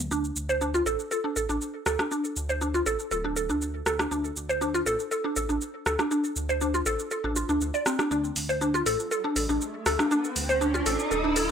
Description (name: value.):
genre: afro house.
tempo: 120 BPM.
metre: 4/4.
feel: straight.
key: D minor pentatonic.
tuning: A4 = 438 Hz.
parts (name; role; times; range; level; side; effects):
smooth synth bass; bass; 0.0-11.5 s; D1 to D2; -33 LUFS; equal; none.
mallet-like synth pluck; arpeggios; 0.1-11.4 s; C4 to D5; -26 LUFS; equal; ensemble chorus, cassette tape, tape echo.
afro-pop drum kit; drums; 0.1-11.5 s; hi-hat, rim click, shaker; -31 LUFS; equal; none.
riser; sound effects; 9.1-11.5 s; none; -32 LUFS; right 1 dB; none.
room: light reverb.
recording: dry, gritty hardware recording.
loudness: -25 LUFS.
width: side -8 dB against mid.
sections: 0.1-11.5 A section.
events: build-up 0.1-11.5; riser 9.1-11.5.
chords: 0.1 D5.